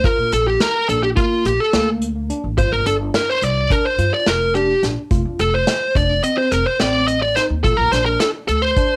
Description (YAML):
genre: progressive instrumental, band music in an uneven meter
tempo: 213 BPM (eighths)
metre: 9/8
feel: straight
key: Bb major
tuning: A4 = 436 Hz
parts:
  - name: fuzz lead guitar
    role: melody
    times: 0.0-9.0 s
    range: F4 to Eb5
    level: -20 LUFS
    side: equal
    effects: distortion, cassette tape
  - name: tine electric piano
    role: arpeggios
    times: 0.0-8.9 s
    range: Bb3 to F4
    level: -28 LUFS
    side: equal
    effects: overdrive, tape echo
  - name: unplugged drum kit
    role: drums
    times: 0.0-8.9 s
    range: hi-hat, kick drum, snare drum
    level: -23 LUFS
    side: equal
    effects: cassette tape
  - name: upright bass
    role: bass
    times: 0.2-8.7 s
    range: F1 to Bb2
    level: -24 LUFS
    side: equal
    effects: none
room: moderate small room reverb, RT60 0.5 s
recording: home recording on cassette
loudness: -18 LUFS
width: mono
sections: 0.0-9.0 A section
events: lead electric guitar solo 0.0-9.0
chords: 0.0 Bbmaj7; 2.6 Gm7; 5.1 F; 7.6 Bbmaj7